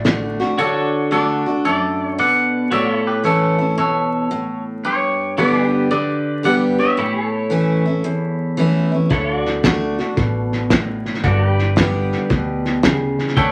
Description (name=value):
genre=honky-tonk and classic country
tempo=113 BPM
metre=4/4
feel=swing 66% on 8ths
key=D major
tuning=A4 = 440 Hz
part: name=picked steel-string acoustic guitar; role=accompaniment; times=0.0-13.5 s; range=E2 to G4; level=-22 LUFS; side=equal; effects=none
part: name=pedal steel guitar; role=sustained chords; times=0.0-13.5 s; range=D4 to F#5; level=-26 LUFS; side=equal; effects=none
part: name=vintage muted fingered electric bass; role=bass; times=0.0-0.4, 9.1-13.5 s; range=G1 to D2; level=-25 LUFS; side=equal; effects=none
part: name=cloth-damped thuddy drum kit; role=drums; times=0.1-0.4, 9.1-13.5 s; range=hi-hat, kick drum, snare drum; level=-22 LUFS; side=equal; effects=none
part: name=twangy electric guitar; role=second line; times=0.6-7.8, 13.4-13.5 s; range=G4 to F#5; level=-22 LUFS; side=equal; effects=none
room=wet studio reverb, RT60 0.5 s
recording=vinyl crackle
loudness=-18 LUFS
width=mono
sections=0.6-13.5 A section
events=clean electric guitar solo 0.6-13.5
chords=0.0 D; 2.7 A; 4.8 G; 7.0 A; 9.1 D; 11.2 G